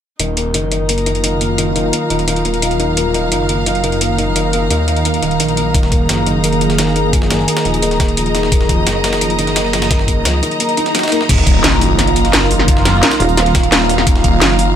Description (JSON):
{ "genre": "dark technical drum and bass", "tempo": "173 BPM", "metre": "4/4", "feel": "straight", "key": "Eb minor", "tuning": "A4 = 440 Hz", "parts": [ { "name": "sweeping resonant pad", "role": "sustained chords", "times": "0.2-14.8 s", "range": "Eb3 to Ab4", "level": "-19 LUFS", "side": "right 2 dB", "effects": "chorus, sidechain pumping" }, { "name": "felt-muted upright piano", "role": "arpeggios", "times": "0.2-11.2 s", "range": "Eb3 to Eb4", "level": "-20 LUFS", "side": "left 2 dB", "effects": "sidechain pumping, low-pass filter, ping-pong delay" }, { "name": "phased detuned saw bass", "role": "bass", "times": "0.2-14.8 s", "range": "Eb1 to Eb2", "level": "-18 LUFS", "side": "equal", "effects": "phaser, sidechain pumping" }, { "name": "drum and bass drum kit", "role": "drums", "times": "0.2-14.7 s", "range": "crash cymbal, hi-hat, snare drum", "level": "-18 LUFS", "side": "left 1 dB", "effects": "none" }, { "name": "dark studio string section", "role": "texture", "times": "0.2-14.8 s", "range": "Gb3 to Bb5", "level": "-20 LUFS", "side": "equal", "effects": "sidechain pumping" }, { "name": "breakbeat sampler-style drum kit", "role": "drums", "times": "5.7-14.7 s", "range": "hi-hat, snare drum", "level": "-23 LUFS", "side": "equal", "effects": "high-pass filter on hats, high-pass filter on snare" }, { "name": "electronic kick drum", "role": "drums", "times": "5.7-14.3 s", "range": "none", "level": "-14 LUFS", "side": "equal", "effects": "overdrive" }, { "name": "swell and impact", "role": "sound effects", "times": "10.7-12.7 s", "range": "none", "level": "-20 LUFS", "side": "left 1 dB", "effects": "none" }, { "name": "pulsing pluck wobble bass", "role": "bass", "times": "13.2-13.5 s", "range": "Eb1", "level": "-14 LUFS", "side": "equal", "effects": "chorus" } ], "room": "light reverb", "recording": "none", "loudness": "-12 LUFS", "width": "side -9 dB against mid", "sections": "0.2-11.3 A section; 11.3-14.8 B section", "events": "swell 10.7-11.3; drop 11.3-14.8; impact 11.3-12.7", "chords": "0.2 Ebmadd9" }